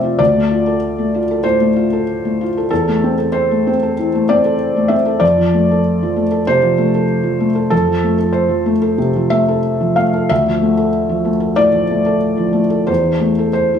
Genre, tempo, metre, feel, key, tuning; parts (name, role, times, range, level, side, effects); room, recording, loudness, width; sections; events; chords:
neoclassical minimalist piano; 95 BPM; 4/4; rubato; F major; A4 = 440 Hz
felt-muted upright piano; solo; 0.0-13.8 s; D2 to F5; -13 LUFS; equal
moderate stone room reverb, RT60 1.5 s; small room ambience; -13 LUFS; side -8 dB against mid
0.0-13.8 A section
0.2 Dm; 2.7 Am/E; 5.2 F; 10.3 Dm; 12.9 Am/E